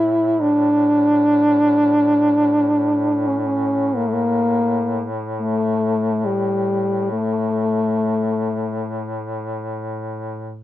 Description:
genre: caucasian folk, Caucasian lament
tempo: free time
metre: none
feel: none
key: unclear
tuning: A4 = 440 Hz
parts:
  - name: mellow French horn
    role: melody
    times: 0.0-9.3 s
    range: G3 to E4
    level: -17 LUFS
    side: equal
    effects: none
  - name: warm duduk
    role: drone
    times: 0.0-10.6 s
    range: A2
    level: -26 LUFS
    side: left 1 dB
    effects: stereo widening
room: light reverb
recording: dry, close 1970s-style studio recording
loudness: -17 LUFS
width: side -14 dB against mid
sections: 0.0-10.6 A section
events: none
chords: none

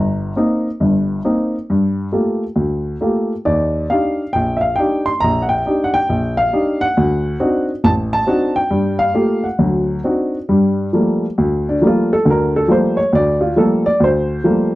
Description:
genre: solo jazz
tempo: 137 BPM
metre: 4/4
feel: swing 65% on 8ths, rubato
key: G minor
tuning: A4 = 440 Hz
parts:
  - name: warm baby grand piano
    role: solo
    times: 0.0-14.7 s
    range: G1 to C6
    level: -14 LUFS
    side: equal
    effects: none
room: light reverb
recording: dry, close 1970s-style studio recording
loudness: -14 LUFS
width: side -17 dB against mid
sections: 0.0-10.5 A section; 10.5-14.8 B section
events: grand piano solo 10.5-14.8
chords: 0.0 Cm7; 1.7 Gm9; 3.5 Ebmaj7; 7.0 D7b9; 8.7 Gm9; 9.6 D7b9; 10.5 Gm9

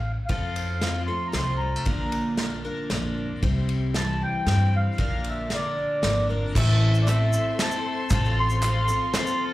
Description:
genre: indie folk with a building arrangement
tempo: 115 BPM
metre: 3/4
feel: straight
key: unclear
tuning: A4 = 440 Hz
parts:
  - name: mellow accordion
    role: melody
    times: 0.0-9.5 s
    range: D5 to C6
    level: -28 LUFS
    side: equal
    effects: slapback echo
  - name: upright bass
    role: bass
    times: 0.0-8.9 s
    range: Ab1 to G2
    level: -25 LUFS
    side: equal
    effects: none
  - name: fingerpicked steel-string acoustic guitar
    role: accompaniment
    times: 0.3-6.6 s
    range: F2 to F4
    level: -33 LUFS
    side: equal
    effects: slapback echo
  - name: picked twelve-string acoustic guitar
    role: accompaniment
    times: 0.3-9.5 s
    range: A2 to C5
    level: -30 LUFS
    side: left 3 dB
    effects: slapback echo
  - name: unplugged drum kit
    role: drums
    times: 0.3-9.3 s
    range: crash cymbal, hi-hat, kick drum, ride cymbal, snare drum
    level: -29 LUFS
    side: right 1 dB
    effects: none
  - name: warm upright piano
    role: accompaniment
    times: 6.5-9.5 s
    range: A1 to E5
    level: -37 LUFS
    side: right 1 dB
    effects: slapback echo
  - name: rich studio string section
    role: sustained chords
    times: 6.5-9.5 s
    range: A4 to C6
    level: -36 LUFS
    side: left 3 dB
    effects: none
  - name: group handclap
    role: percussion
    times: 6.6-9.3 s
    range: none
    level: -35 LUFS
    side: right 2 dB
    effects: none
  - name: tube shaker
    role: percussion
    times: 6.6-9.4 s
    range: none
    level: -40 LUFS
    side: right 1 dB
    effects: none
room: little or no reverb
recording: live gig heard through the venue's PA, club reverb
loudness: -22 LUFS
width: side -16 dB against mid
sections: 0.0-6.6 A section; 6.6-9.5 B section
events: none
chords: 0.3 F; 1.9 Bb; 3.4 C; 5.0 Bb; 6.6 Am; 8.1 F/A

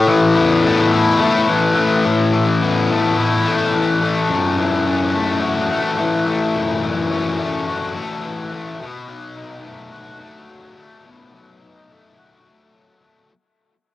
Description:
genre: rock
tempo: 107 BPM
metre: 4/4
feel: straight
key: unclear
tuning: A4 = 440 Hz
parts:
  - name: fuzz guitar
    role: solo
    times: 0.0-13.3 s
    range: F#2 to F#4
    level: -16 LUFS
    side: left 2 dB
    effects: distortion, lush chorus
room: moderate booth ambience, RT60 0.2 s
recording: home recording on cassette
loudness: -15 LUFS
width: side -14 dB against mid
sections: 0.0-13.3 A section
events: fade-out 0.0-13.3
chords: 0.0 Asus2; 4.3 F#m7; 8.8 B7

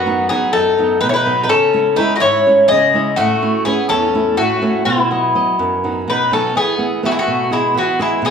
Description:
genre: greek folk, Greek bouzouki band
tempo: 250 BPM (eighths)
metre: 7/8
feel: straight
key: E major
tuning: A4 = 440 Hz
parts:
  - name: Greek bouzouki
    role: melody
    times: 0.0-8.3 s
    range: E4 to D#5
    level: -14 LUFS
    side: left 2 dB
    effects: none
  - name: Greek bouzouki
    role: second line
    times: 0.0-8.3 s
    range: G#3 to G#4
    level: -22 LUFS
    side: right 3 dB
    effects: none
  - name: flamenco guitar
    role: accompaniment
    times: 0.0-8.3 s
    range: E2 to D#5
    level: -20 LUFS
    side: right 3 dB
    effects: none
room: wet large studio reverb, RT60 1.1 s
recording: band playing live in one room, faint mains hum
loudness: -13 LUFS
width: side -6 dB against mid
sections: 0.0-6.6 A section; 6.6-8.3 B section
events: none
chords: 0.0 B; 1.5 C#m; 3.2 A; 4.9 B; 6.6 E

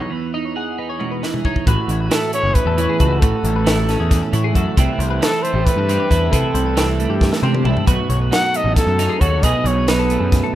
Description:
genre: math rock and midwest emo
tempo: 270 BPM (eighths)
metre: 7/8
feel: straight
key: unclear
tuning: A4 = 440 Hz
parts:
  - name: twelve-string electric guitar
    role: accompaniment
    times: 0.0-10.6 s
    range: E2 to G#4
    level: -22 LUFS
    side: right 6 dB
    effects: lush chorus
  - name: twelve-string electric guitar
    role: arpeggios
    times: 0.0-10.5 s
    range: G4 to F#5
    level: -28 LUFS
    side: left 9 dB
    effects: none
  - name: crisp fusion drum kit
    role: drums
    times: 1.0-10.4 s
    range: hi-hat, kick drum, snare drum, toms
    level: -19 LUFS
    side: equal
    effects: none
  - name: fuzz picked electric bass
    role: bass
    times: 1.7-10.4 s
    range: F#1 to C3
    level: -19 LUFS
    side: equal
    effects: overdrive
  - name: breathy trumpet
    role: melody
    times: 2.1-10.5 s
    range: A4 to F#5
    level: -21 LUFS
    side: left 1 dB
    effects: none
room: light reverb, small room ambience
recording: rough home demo mix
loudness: -15 LUFS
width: side -13 dB against mid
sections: 0.0-1.7 A section; 1.7-10.6 B section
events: drum fill 1.0-1.7, 7.2-7.9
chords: 0.0 Emaj9; 1.7 A6; 4.8 C6; 7.9 B13

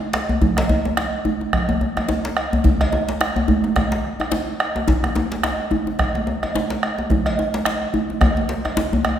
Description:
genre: west african traditional, West African drum ensemble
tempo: 108 BPM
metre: 4/4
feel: swing 57% on 16ths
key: none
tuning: none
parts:
  - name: bombo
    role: percussion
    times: 0.1-9.2 s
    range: none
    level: -23 LUFS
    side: right 1 dB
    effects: none
  - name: cowbell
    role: percussion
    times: 0.1-9.2 s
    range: none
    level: -27 LUFS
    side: right 2 dB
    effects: none
  - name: djembe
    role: percussion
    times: 0.1-9.1 s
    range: none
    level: -26 LUFS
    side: left 3 dB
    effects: none
  - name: djembe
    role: percussion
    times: 0.1-9.2 s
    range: none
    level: -23 LUFS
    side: left 2 dB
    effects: none
  - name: congas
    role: percussion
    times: 0.4-8.9 s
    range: none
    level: -26 LUFS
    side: right 5 dB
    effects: none
room: wet recital hall reverb, RT60 1.6 s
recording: recorded in a church or concert hall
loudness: -18 LUFS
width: side -10 dB against mid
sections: 0.0-9.2 A section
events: none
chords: none

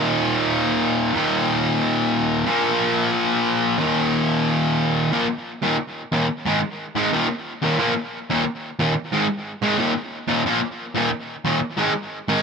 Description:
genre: punk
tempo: 180 BPM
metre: 4/4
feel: straight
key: unclear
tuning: A4 = 440 Hz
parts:
  - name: distorted electric guitar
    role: solo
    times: 0.0-12.4 s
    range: Eb2 to Bb3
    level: -19 LUFS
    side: equal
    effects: distortion, tape echo
room: light reverb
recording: none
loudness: -19 LUFS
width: side -5 dB against mid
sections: 0.0-5.1 A section; 5.1-12.4 B section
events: half time 5.1-12.4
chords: 0.0 Eb5; 2.5 Bb5; 3.8 Eb5; 5.1 Bb5; 5.6 Eb5; 6.5 Ab5; 7.1 Eb5; 7.8 Bb5; 8.3 Eb5; 9.1 Ab5; 9.8 Eb5; 10.5 Bb5; 11.0 Eb5; 11.8 Ab5

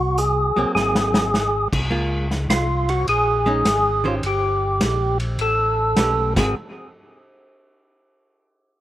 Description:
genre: soul jazz organ trio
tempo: 103 BPM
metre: 4/4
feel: swing 67% on 8ths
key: unclear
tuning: A4 = 438 Hz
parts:
  - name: percussive tonewheel organ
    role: melody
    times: 0.0-6.6 s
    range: F4 to A4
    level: -20 LUFS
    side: equal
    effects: slow rotary speaker, overdrive, slapback echo
  - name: mellow tonewheel organ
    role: bass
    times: 0.0-6.5 s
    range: G1 to Db2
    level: -24 LUFS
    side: equal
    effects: overdrive, chorus vibrato, slow rotary speaker
  - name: vintage drum kit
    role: drums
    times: 0.2-6.5 s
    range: crash cymbal, hi-hat, kick drum, ride cymbal, snare drum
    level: -24 LUFS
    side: equal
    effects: none
  - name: archtop guitar, miked and amplified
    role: accompaniment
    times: 0.6-6.5 s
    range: Eb3 to C5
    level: -26 LUFS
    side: right 1 dB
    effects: slapback echo
room: little or no reverb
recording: none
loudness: -18 LUFS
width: side -14 dB against mid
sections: 0.0-1.9 A section; 1.9-6.6 B section; 6.6-8.8 C section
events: drum fill 0.8-1.3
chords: 0.0 Ab9; 1.9 Db6; 3.1 Bbm11; 4.2 Gm; 5.4 A9; 6.3 Ab9; 6.6 N.C.

